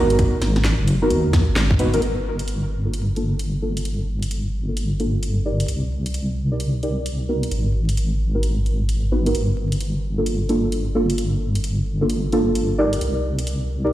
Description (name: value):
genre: UK garage, two-step garage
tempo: 131 BPM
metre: 4/4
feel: swing 63% on 16ths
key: G minor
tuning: A4 = 442 Hz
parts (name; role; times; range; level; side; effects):
- deep mellow chord stab; stabs; 0.0-13.9 s; Bb3 to D5; -23 LUFS; right 1 dB; chorus, ping-pong delay
- deep soft wobble bass; bass; 0.0-13.9 s; Gb1 to Eb2; -21 LUFS; equal; chorus, sidechain pumping
- garage drum kit; drums; 0.1-13.6 s; hi-hat, snare drum; -29 LUFS; equal; overdrive, small room reverb
- electronic kick drum; drums; 0.2-1.8 s; none; -18 LUFS; equal; overdrive, small room reverb
room: light reverb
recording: played on a big sound system in a bare room, stone room reverb, vinyl crackle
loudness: -19 LUFS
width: side -14 dB against mid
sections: 0.0-2.0 A section; 2.0-13.9 B section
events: band accent 1.6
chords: 0.2 Abm7; 2.0 Gm7; 5.7 Cm7; 7.5 Abm7; 9.3 Gm7; 13.0 Cm7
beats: | 0.19 0.65 1.10 1.56 | 2.02 2.48 2.94 3.40 | 3.85 4.31 4.77 5.23 | 5.68 6.14 6.60 7.06 | 7.52 7.97 8.43 8.89 | 9.35 9.81 10.27 10.72 | 11.18 11.64 12.10 12.55 | 13.01 13.47 13.93